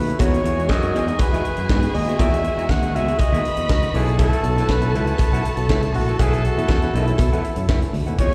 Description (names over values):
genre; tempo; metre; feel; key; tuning
disco; 120 BPM; 4/4; straight; unclear; A4 = 438 Hz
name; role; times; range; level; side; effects
warm flugelhorn; melody; 0.0-8.3 s; E4 to F#5; -28 LUFS; equal; slapback echo
barky tine electric piano; accompaniment; 0.0-8.3 s; B2 to F#4; -34 LUFS; equal; overdrive, slapback echo
muted French horn section; sustained chords; 0.0-8.2 s; D#3 to A4; -35 LUFS; equal; none
fingered electric bass; bass; 0.0-8.3 s; F#1 to B2; -24 LUFS; equal; none
mellow electric guitar; accompaniment; 0.1-8.3 s; B3 to F#5; -31 LUFS; equal; slapback echo
tight funk drum kit; drums; 0.1-8.3 s; hi-hat, kick drum, snare drum; -24 LUFS; equal; none
warm studio string section; second line; 0.2-8.3 s; G#4 to B5; -33 LUFS; equal; slapback echo
cowbell; percussion; 0.2-7.8 s; none; -35 LUFS; equal; none
room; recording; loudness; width
small room ambience; live gig heard through the venue's PA, recital hall reverb; -20 LUFS; mono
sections
0.0-8.2 A section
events
none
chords
0.2 Emaj9; 3.9 B7sus4